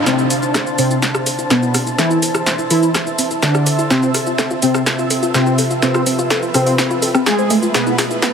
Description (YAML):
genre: melodic techno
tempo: 125 BPM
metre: 4/4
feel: straight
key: A harmonic minor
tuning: A4 = 439 Hz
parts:
  - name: woody wave-folded pluck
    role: arpeggios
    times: 0.0-8.3 s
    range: A3 to C5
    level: -22 LUFS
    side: equal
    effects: wide subtle chorus, tape echo
  - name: granular cloud pad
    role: texture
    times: 0.0-8.3 s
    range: D4 to A5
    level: -22 LUFS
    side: equal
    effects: built-in reverb
  - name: wide unison lead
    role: melody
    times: 0.1-7.9 s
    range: B3 to G#4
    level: -20 LUFS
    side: equal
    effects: ensemble chorus, digital delay
  - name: airy dreamy lead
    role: second line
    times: 0.1-7.9 s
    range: B2 to G#3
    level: -21 LUFS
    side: equal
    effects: chorus, tape echo
  - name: deep house drum kit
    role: drums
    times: 0.1-8.3 s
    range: hi-hat, rim click, shaker, snare drum, toms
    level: -19 LUFS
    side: equal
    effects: overdrive, high-pass filter on hats, high-pass filter on perc, high-pass filter on snare, high-pass filter on toms
room: moderate huge ambient reverb, RT60 5.0 s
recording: heavily compressed radio sound, high-pass filter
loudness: -13 LUFS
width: side -6 dB against mid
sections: 0.1-8.3 A section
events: build-up 0.1-8.3; drum fill 0.1-8.3; filter sweep on analog synth lead 0.1-8.3; filter sweep on digital synth lead 0.1-8.3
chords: 0.1 Am; 3.9 F; 7.7 E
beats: | 0.06 0.54 1.02 1.50 | 1.98 2.46 2.94 3.42 | 3.90 4.38 4.86 5.34 | 5.82 6.30 6.78 7.26 | 7.74 8.22